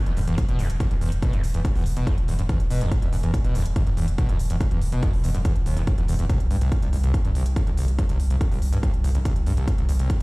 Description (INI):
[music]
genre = driving peak-time techno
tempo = 142 BPM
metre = 4/4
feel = straight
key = E minor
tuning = A4 = 440 Hz
[part]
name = screaming distorted acid line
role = riff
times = 0.1-10.1 s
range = C2 to B2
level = -26 LUFS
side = equal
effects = distortion, lush chorus, cassette tape, sidechain pumping, digital delay
[part]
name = saturated sub bass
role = bass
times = 0.1-10.1 s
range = E1 to C2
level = -24 LUFS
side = equal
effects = overdrive, sidechain pumping, low-pass filter
[part]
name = electronic hi-hat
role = drums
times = 0.1-10.2 s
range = none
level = -42 LUFS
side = right 1 dB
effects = small room reverb
[part]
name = electronic kick drum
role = drums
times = 0.4-10.2 s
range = none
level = -23 LUFS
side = equal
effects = small room reverb
[sound]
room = little or no reverb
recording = played on a big sound system in a bare room, stone room reverb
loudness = -20 LUFS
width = side -25 dB against mid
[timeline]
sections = 0.0-10.2 A section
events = none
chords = 0.0 E5; 6.3 N.C.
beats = 0.38 0.80 | 1.23 1.65 2.07 2.49 | 2.92 3.34 3.76 4.18 | 4.61 5.03 5.45 5.87 | 6.30 6.72 7.14 7.56 | 7.99 8.41 8.83 9.25 | 9.68 10.10